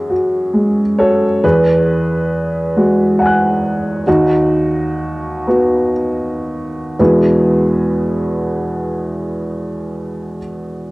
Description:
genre	neoclassical minimalist piano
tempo	38-46 BPM (dotted quarters)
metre	6/8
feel	rubato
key	E major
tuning	A4 = 441 Hz
part	clear upright piano	solo	0.0-10.9 s	D#2 to F#6	-13 LUFS	equal	none
room	moderate spring reverb, RT60 2.5 s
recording	home recording on cassette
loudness	-13 LUFS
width	side -22 dB against mid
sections	0.0-1.4 A section; 1.4-7.0 B section; 7.0-10.0 C section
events	slowing down 0.1-7.0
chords	0.0 F#sus2; 1.4 Eadd9; 4.1 B/D#; 7.0 Eadd9

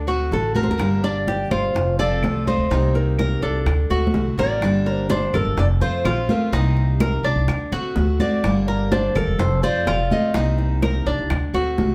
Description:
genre	latin, Cuban son and guajira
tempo	126 BPM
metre	4/4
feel	straight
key	G minor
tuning	A4 = 440 Hz
part	nylon-string guitar	melody	0.0-10.6 s	A4 to Eb5	-27 LUFS	equal	none
part	Cuban tres	arpeggios	0.0-11.9 s	D4 to Eb5	-29 LUFS	equal	none
part	upright bass	bass	0.0-11.9 s	E1 to D3	-25 LUFS	equal	none
part	picked steel-string acoustic guitar	accompaniment	0.1-11.9 s	C3 to G4	-28 LUFS	equal	none
part	bongos	percussion	0.1-11.9 s	none	-33 LUFS	equal	none
part	congas	percussion	0.1-11.9 s	none	-28 LUFS	equal	none
part	claves	percussion	0.8-11.5 s	none	-38 LUFS	equal	none
room	moderate studio reverb, RT60 0.7 s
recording	heard from further back in the room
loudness	-20 LUFS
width	mono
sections	0.0-4.6 A section; 4.6-11.9 B section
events	drum fill 3.9-4.6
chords	0.0 D7; 0.8 Gm; 1.8 F; 2.7 Cm7; 3.7 D7; 4.6 Gm; 5.6 F; 6.5 Cm7; 7.5 D7; 8.4 Gm; 9.4 F; 10.4 Cm7; 11.3 D7

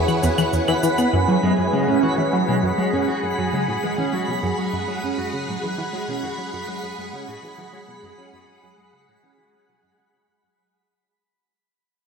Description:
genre	ambient, sequencer-driven space music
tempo	100 BPM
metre	4/4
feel	straight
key	unclear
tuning	A4 = 439 Hz
part	breathy flute-like synth lead	melody	0.0-0.5 s	G#4	-33 LUFS	left 1 dB	none
part	string machine, full ensemble	sustained chords	0.0-10.7 s	E4 to G#5	-25 LUFS	left 1 dB	ensemble chorus
part	tight sequenced synth	riff	0.0-10.7 s	E2 to B3	-24 LUFS	equal	chorus, analog delay
part	twinkling granular texture	texture	0.0-10.7 s	B5	-31 LUFS	right 2 dB	built-in reverb
part	cabasa and claves	percussion	0.1-1.1 s	none	-29 LUFS	right 1 dB	analog delay
part	electric guitar at the edge of break-up	arpeggios	1.3-10.6 s	F#3 to F#4	-24 LUFS	right 2 dB	auto-pan, analog delay
room	wet echo chamber reverb, RT60 2.3 s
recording	echo-heavy mix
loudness	-19 LUFS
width	side -6 dB against mid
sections	0.0-1.1 A section; 1.1-10.7 B section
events	fade-out on synth arpeggio sound 1.1-10.7; fade-out on clean electric guitar 1.1-10.7; fade-out 1.1-10.7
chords	0.0 E6; 1.1 F#sus2

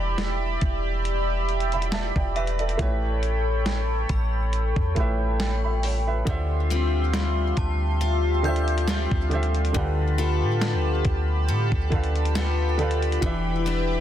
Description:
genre	contemporary R&B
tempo	69 BPM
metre	4/4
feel	swing 54% on 16ths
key	D dorian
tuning	A4 = 444 Hz
part	warm baby grand piano	accompaniment	0.0-14.0 s	D3 to B5	-32 LUFS	right 4 dB	none
part	chorused pulse-width pad	sustained chords	0.0-14.0 s	F4 to D6	-29 LUFS	equal	none
part	clean 808-style bass	bass	0.0-14.0 s	E1 to A2	-25 LUFS	equal	none
part	crisp 8-bit digital drum machine	drums	0.2-13.9 s	hi-hat, kick drum, snare drum	-28 LUFS	equal	vintage 12-bit sampler grit
part	synth chime	texture	2.4-10.1 s	E5 to G6	-37 LUFS	left 1 dB	ensemble chorus, ping-pong delay
part	picked steel-string acoustic guitar	arpeggios	6.3-14.0 s	D3 to A4	-29 LUFS	left 6 dB	ping-pong delay
room	digital ambience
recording	dense, heavily limited modern master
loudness	-22 LUFS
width	side -11 dB against mid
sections	0.0-14.0 A section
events	none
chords	0.0 Em7; 2.8 A9; 6.3 Dm11; 9.7 G9/D; 13.2 Em7

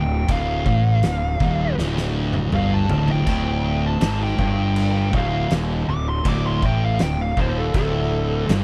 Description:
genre	stoner and doom metal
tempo	80 BPM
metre	4/4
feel	straight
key	unclear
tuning	A4 = 440 Hz
part	fuzz lead guitar	melody	0.0-8.5 s	A4 to D6	-30 LUFS	equal	distortion, tape echo
part	thick fuzz guitar	riff	0.0-8.6 s	D2 to A2	-29 LUFS	equal	distortion
part	thick fuzz guitar	riff	0.0-8.6 s	D2 to A2	-27 LUFS	equal	distortion
part	fuzz fingered electric bass	bass	0.0-8.6 s	D1 to A1	-26 LUFS	equal	overdrive
part	oversized low-tuned drum kit	drums	0.3-8.6 s	crash cymbal, kick drum, snare drum, splash cymbal, toms	-28 LUFS	equal	none
part	overdriven electric guitar	riff	3.3-8.6 s	D2 to A2	-32 LUFS	equal	none
room	studio ambience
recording	none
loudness	-21 LUFS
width	mono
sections	0.0-8.6 A section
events	lead electric guitar solo 0.0-8.6; drum fill 1.8-3.3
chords	0.0 D5

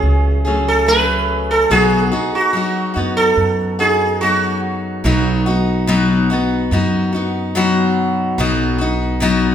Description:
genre	acoustic folk duo or small band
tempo	72 BPM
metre	4/4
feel	straight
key	unclear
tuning	A4 = 444 Hz
part	sitar	melody	0.0-4.6 s	F#4 to B4	-16 LUFS	right 2 dB	none
part	picked steel-string acoustic guitar	accompaniment	0.0-9.5 s	B2 to G#4	-17 LUFS	left 3 dB	none
part	upright bass	bass	0.0-9.5 s	B1 to F#2	-19 LUFS	right 1 dB	none
room	wet recital hall reverb, RT60 1.3 s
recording	recorded in a church or concert hall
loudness	-14 LUFS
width	side -9 dB against mid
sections	0.0-5.0 A section; 5.0-9.5 B section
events	sitar solo 0.0-5.0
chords	0.0 F#madd9; 1.7 B

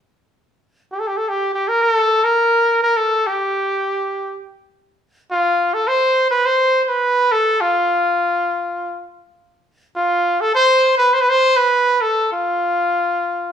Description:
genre	klezmer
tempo	103 BPM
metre	4/4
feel	straight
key	G minor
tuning	A4 = 440 Hz
part	clear cornet	solo	0.9-13.5 s	F4 to C5	-15 LUFS	equal	none
room	moderate large studio reverb, RT60 1.0 s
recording	band playing live in one room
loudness	-15 LUFS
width	side -8 dB against mid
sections	0.0-4.7 A section; 4.7-13.5 B section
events	none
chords	none

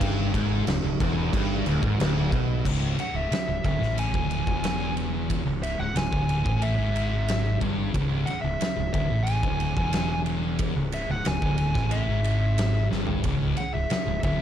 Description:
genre	stoner and doom metal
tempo	91 BPM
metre	4/4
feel	straight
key	C# minor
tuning	A4 = 440 Hz
part	deep rumbling drone	sustained chords	0.0-14.4 s	C#3 to G#4	-40 LUFS	right 2 dB	none
part	sludgy distorted guitar	riff	0.0-2.6 s	C#2 to B2	-31 LUFS	equal	overdrive
part	thick fuzz guitar	riff	0.0-14.4 s	C#2 to B2	-30 LUFS	left 6 dB	distortion
part	thick fuzz guitar	riff	0.0-14.4 s	C#2 to B2	-30 LUFS	right 5 dB	distortion
part	fuzz fingered electric bass	bass	0.0-14.4 s	C#1 to B1	-30 LUFS	equal	overdrive
part	oversized low-tuned drum kit	drums	0.0-14.4 s	crash cymbal, kick drum, ride cymbal, snare drum, toms	-29 LUFS	equal	none
part	fuzz lead guitar	melody	3.0-14.4 s	E5 to G#5	-31 LUFS	equal	distortion, digital delay
room	light reverb, small room reverb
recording	dark, warm production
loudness	-23 LUFS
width	side -10 dB against mid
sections	0.0-2.7 A section; 2.7-14.4 B section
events	drum fill 12.9-13.2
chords	0.0 C#m

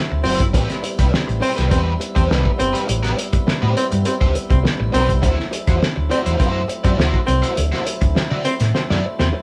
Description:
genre	funk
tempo	102 BPM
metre	4/4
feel	straight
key	A dorian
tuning	A4 = 440 Hz
part	tonewheel organ	sustained chords	0.0-9.4 s	F#3 to E4	-31 LUFS	equal	fast rotary speaker, overdrive
part	overdriven semi-hollow guitar	accompaniment	0.1-9.4 s	C4 to D5	-27 LUFS	equal	wah
part	hollow-body short-scale fingered electric bass	bass	0.1-9.3 s	F#1 to D3	-22 LUFS	equal	none
part	mellow baritone saxophone	second line	0.2-9.3 s	C4	-24 LUFS	equal	none
part	cloth-damped thuddy drum kit	drums	0.3-9.3 s	hi-hat, kick drum, snare drum	-22 LUFS	equal	none
room	moderate studio reverb, RT60 0.8 s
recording	band playing live in one room, lossy compression artefacts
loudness	-18 LUFS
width	mono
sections	0.0-9.4 A section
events	drum fill 8.7-9.4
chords	0.0 D9; 0.5 Am9; 5.2 D9

